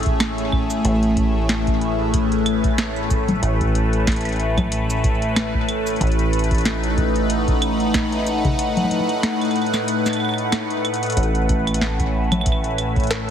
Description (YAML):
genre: IDM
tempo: 93 BPM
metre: 4/4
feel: swing 56% on 16ths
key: A lydian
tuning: A4 = 440 Hz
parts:
  - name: phased analog pad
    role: sustained chords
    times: 0.0-13.3 s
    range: A2 to F#5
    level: -21 LUFS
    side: left 1 dB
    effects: phaser, chorus
  - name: deep acid bass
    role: bass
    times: 0.0-13.3 s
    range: A1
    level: -23 LUFS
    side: equal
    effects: tube saturation
  - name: booming analog drum machine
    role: drums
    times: 0.0-13.2 s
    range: claves, congas, hi-hat, shaker, snare drum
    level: -24 LUFS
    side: equal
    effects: ping-pong delay
  - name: electronic kick drum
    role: drums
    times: 0.1-13.1 s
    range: none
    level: -24 LUFS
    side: equal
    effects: none
room: light reverb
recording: heavily compressed radio sound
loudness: -18 LUFS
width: side -9 dB against mid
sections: 0.0-11.2 A section; 11.2-13.3 A section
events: drum fill 10.8-11.2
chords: 0.0 Amaj7; 6.0 B/A; 11.2 Aadd9